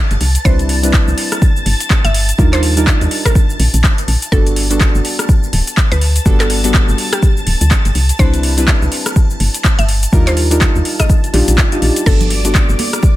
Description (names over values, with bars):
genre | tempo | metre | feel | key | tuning
deep house | 124 BPM | 4/4 | swing 59% on 16ths | G major | A4 = 440 Hz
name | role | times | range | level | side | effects
deep mellow chord stab | stabs | 0.0-13.2 s | G3 to B4 | -19 LUFS | equal | chorus, sidechain pumping, dub echo
string machine, violins | texture | 0.0-13.2 s | D5 to A6 | -26 LUFS | equal | ensemble chorus, sidechain pumping
woody FM bass | bass | 0.1-12.8 s | D1 to Eb2 | -14 LUFS | equal | sidechain pumping
deep house drum kit | drums | 0.1-13.1 s | crash cymbal, handclaps, hi-hat, rim click, shaker | -18 LUFS | left 1 dB | overdrive
mallet-like synth pluck | melody | 0.5-12.4 s | G4 to E5 | -23 LUFS | right 1 dB | chorus, dub echo
electronic kick drum | drums | 0.5-13.1 s | none | -12 LUFS | equal | overdrive
congas and bongos | percussion | 12.2-13.1 s | none | -23 LUFS | right 4 dB | none
room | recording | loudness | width
little or no reverb | none | -10 LUFS | side -16 dB against mid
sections
0.0-13.2 A section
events
none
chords
0.2 Cmaj9; 2.4 Ebmaj9; 4.3 Gmaj9; 8.0 Cmaj9; 10.1 Ebmaj9; 12.1 Gmaj9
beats
| 0.45 0.93 1.42 1.90 | 2.38 2.87 3.35 3.84 | 4.32 4.80 5.29 5.77 | 6.26 6.74 7.22 7.71 | 8.19 8.68 9.16 9.64 | 10.13 10.61 11.10 11.58 | 12.06 12.55 13.03